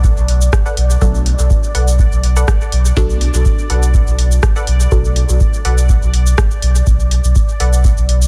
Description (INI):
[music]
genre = dub techno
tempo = 123 BPM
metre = 4/4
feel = swing 53% on 16ths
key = unclear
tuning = A4 = 440 Hz
[part]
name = pure sine sub bass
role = bass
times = 0.0-8.3 s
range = F#1 to B1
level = -15 LUFS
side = equal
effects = sidechain pumping
[part]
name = booming analog drum machine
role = drums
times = 0.0-8.3 s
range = cabasa, hi-hat, rim click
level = -26 LUFS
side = equal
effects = small room ambience
[part]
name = electronic kick drum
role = drums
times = 0.0-7.9 s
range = none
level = -17 LUFS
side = equal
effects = small room ambience
[part]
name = bubbling stepped-filter texture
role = texture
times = 0.0-8.3 s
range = D5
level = -30 LUFS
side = equal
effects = chorus, built-in reverb, sidechain pumping
[part]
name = filtered dub chord stab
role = riff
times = 0.7-7.8 s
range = A4 to F#5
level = -30 LUFS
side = equal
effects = chorus, sidechain pumping, dub echo
[part]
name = filtered dub chord stab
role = stabs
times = 1.0-5.2 s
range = B2 to D4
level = -27 LUFS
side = equal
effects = phaser, sidechain pumping, dub echo
[sound]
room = little or no reverb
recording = dense, heavily limited modern master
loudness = -13 LUFS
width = mono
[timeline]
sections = 0.0-8.3 A section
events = none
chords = 0.0 Bm7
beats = 0.04 0.53 | 1.02 1.50 1.99 2.48 | 2.97 3.46 3.94 4.43 | 4.92 5.41 5.89 6.38 | 6.87 7.36 7.84